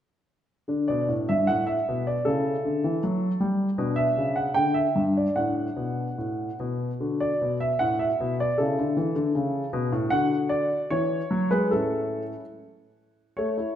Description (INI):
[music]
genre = classical-period piano sonatina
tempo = 71-79 BPM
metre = 2/4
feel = rubato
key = D major, A major from 10.1 s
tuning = A4 = 440 Hz
[part]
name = warm grand piano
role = solo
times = 0.7-13.8 s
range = G2 to G5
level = -23 LUFS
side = equal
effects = none
[sound]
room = wet recital hall reverb, RT60 1.6 s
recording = none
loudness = -23 LUFS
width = side -10 dB against mid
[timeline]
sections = 0.7-13.4 A section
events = none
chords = 0.7 D5; 2.3 A/C#; 3.8 G/B; 5.4 D/A; 6.2 F#madd11/A; 7.0 D; 8.6 A/C#; 10.1 D; 10.9 E; 11.7 A